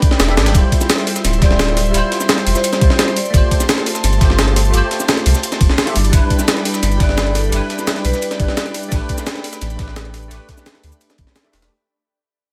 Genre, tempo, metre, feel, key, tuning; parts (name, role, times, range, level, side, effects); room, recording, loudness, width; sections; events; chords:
liquid drum and bass; 172 BPM; 4/4; straight; A4 = 442 Hz
bell-like tine electric piano; accompaniment; 0.0-11.7 s; G3 to E5; -24 LUFS; equal; ensemble chorus, tape echo
airy breathy pad; sustained chords; 0.0-11.7 s; D5 to C6; -30 LUFS; equal; chorus
breakbeat sampler-style drum kit; drums; 0.0-11.7 s; hi-hat, shaker, snare drum; -21 LUFS; equal
breakbeat sampler-style drum kit; drums; 0.0-11.7 s; ride cymbal, snare drum; -28 LUFS; equal; high-pass filter on cymbals, high-pass filter on snare
electronic kick drum; drums; 0.0-11.3 s; -16 LUFS; equal; overdrive
warm sub bass; bass; 0.2-11.7 s; D1 to D2; -19 LUFS; equal
vibraphone with medium mallets; melody; 1.4-3.5, 7.0-8.6 s; A4 to D5; -26 LUFS; equal; tape echo
light reverb, digital ambience; -15 LUFS; mono
0.0-11.7 A section
drop 0.0-11.7; drum fill 0.4; fade-out 6.1-11.7
0.0 A9sus4; 0.5 Dm11; 3.2 G9sus4; 6.0 Em7/G; 8.9 A9sus4